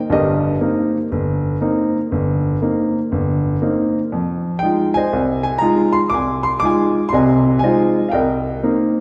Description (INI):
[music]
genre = solo jazz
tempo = 120 BPM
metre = 4/4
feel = swing 69% on 8ths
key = C minor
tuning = A4 = 436 Hz
[part]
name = warm baby grand piano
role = solo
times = 0.0-9.0 s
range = G1 to D6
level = -18 LUFS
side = equal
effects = none
[sound]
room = wet scoring stage reverb, RT60 1.6 s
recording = recorded in a church or concert hall, lossy compression artefacts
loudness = -18 LUFS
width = mono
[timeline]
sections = 0.0-9.0 A section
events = none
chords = 0.0 Cm7; 4.1 Fm7; 8.1 Cm7